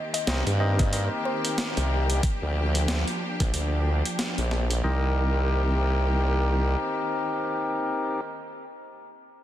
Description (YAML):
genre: glitch hop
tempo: 92 BPM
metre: 4/4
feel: swing 59% on 16ths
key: C minor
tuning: A4 = 445 Hz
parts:
  - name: woody wave-folded pluck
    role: melody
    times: 0.0-1.5 s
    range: C5 to Eb5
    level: -35 LUFS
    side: left 1 dB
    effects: chorus, dub echo
  - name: rich symphonic string section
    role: sustained chords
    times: 0.0-8.2 s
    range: Eb3 to G4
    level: -33 LUFS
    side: equal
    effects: sidechain pumping
  - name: boom bap sampler-style drum kit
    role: drums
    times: 0.1-4.8 s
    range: hi-hat, snare drum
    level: -30 LUFS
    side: equal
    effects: none
  - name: percussive tonewheel organ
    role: stabs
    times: 0.3-8.2 s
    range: C4 to Bb4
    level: -30 LUFS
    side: left 2 dB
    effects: overdrive, vintage 12-bit sampler grit, sidechain pumping, dub echo
  - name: formant-sweep wobble bass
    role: bass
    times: 0.3-6.8 s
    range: Bb1 to G2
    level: -24 LUFS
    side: equal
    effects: chorus
  - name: electronic kick drum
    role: drums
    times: 0.8-3.5 s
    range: none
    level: -25 LUFS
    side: equal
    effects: none
room: light reverb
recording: dense, heavily limited modern master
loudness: -23 LUFS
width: side -12 dB against mid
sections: 0.0-4.8 A section; 4.8-7.4 B section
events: filter sweep on wobble bass 0.0-4.8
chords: 0.0 Cm7; 2.2 Bb6; 4.8 Cm7